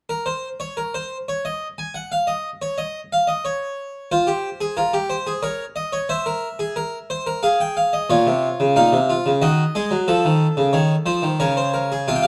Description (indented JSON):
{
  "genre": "classical, baroque-style 3-part fugue for harpsichord",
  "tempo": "90 BPM",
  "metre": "3/4",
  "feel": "straight",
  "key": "Bb minor",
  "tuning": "A4 = 440 Hz",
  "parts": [
    { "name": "harpsichord", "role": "solo", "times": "0.1-12.3 s", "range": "Bb2 to Ab5", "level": "-21 LUFS", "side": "equal", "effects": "none" }
  ],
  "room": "moderate studio reverb, RT60 0.8 s",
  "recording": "dark, warm production",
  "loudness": "-21 LUFS",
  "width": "mono",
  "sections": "0.1-12.3 A section",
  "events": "none",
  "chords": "0.1 N.C.; 4.1 Fm; 5.4 Bbm; 6.1 C7; 7.4 Fm/Ab; 8.1 Bbm; 9.4 Ebm; 10.1 F7; 11.4 Bbm/Db"
}